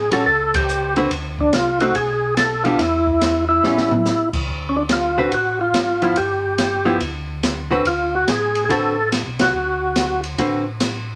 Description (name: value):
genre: soul jazz organ trio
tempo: 142 BPM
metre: 4/4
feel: swing 66% on 8ths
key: D mixolydian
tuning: A4 = 441 Hz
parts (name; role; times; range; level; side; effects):
- percussive tonewheel organ; melody; 0.0-10.2 s; C#4 to A4; -20 LUFS; equal; slow rotary speaker, overdrive, chorus vibrato
- mellow tonewheel organ; bass; 0.0-11.2 s; G1 to A2; -31 LUFS; equal; chorus vibrato, slow rotary speaker
- archtop guitar, miked and amplified; accompaniment; 0.1-10.6 s; D3 to B4; -22 LUFS; equal; none
- open jazz drum kit; drums; 0.1-10.9 s; crash cymbal, hi-hat, kick drum, ride cymbal, snare drum, toms; -26 LUFS; equal; none
room: moderate studio reverb, RT60 0.6 s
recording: none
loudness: -19 LUFS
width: mono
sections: 0.0-4.5 A section; 4.5-11.2 A section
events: band accent 0.5, 9.3; drum fill 3.6-4.1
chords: 0.0 A13; 1.1 D5; 2.0 Bdim7; 2.8 N.C.; 3.6 A9; 4.5 D6; 6.2 G; 7.9 D6